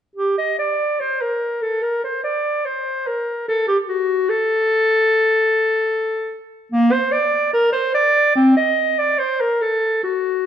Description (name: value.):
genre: classical, baroque-style fantasia for unaccompanied clarinet.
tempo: 73 BPM.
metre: 4/4.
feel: rubato.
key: unclear.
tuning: A4 = 442 Hz.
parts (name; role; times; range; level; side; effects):
mellow clarinet; solo; 0.2-10.5 s; Bb3 to Eb5; -16 LUFS; equal; none.
room: wet recital hall reverb, RT60 1.4 s.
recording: nothing above 10.5 kHz.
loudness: -16 LUFS.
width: side -9 dB against mid.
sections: 0.2-10.5 A section.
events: none.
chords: none.